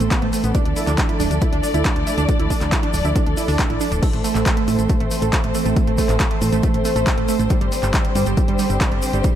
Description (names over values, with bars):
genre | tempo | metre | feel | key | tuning
uplifting trance | 138 BPM | 4/4 | straight | A minor | A4 = 440 Hz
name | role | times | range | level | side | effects
warm studio string section | sustained chords | 0.0-9.4 s | D3 to D5 | -24 LUFS | left 2 dB | sidechain pumping
analog pluck | arpeggios | 0.0-9.3 s | G3 to E4 | -24 LUFS | right 9 dB | chorus, sidechain pumping, ping-pong delay
solid FM bass | bass | 0.0-9.2 s | D1 to A2 | -22 LUFS | equal | sidechain pumping
punchy analog drum machine | drums | 0.0-9.3 s | crash cymbal, handclaps, hi-hat | -27 LUFS | left 1 dB | sidechain pumping on hats, sidechain pumping on cymbals
tube shaker | percussion | 0.0-9.3 s | none | -34 LUFS | left 3 dB | none
electronic kick drum | drums | 0.1-9.3 s | none | -20 LUFS | equal | none
room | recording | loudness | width
little or no reverb | none | -16 LUFS | side -10 dB against mid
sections
0.0-9.4 A section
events
none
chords
0.0 Am; 0.5 Dm; 4.0 Am; 7.5 Gsus4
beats
0.11 | 0.55 0.98 1.42 1.85 | 2.29 2.72 3.16 3.59 | 4.03 4.46 4.89 5.33 | 5.76 6.20 6.63 7.07 | 7.50 7.94 8.37 8.81 | 9.24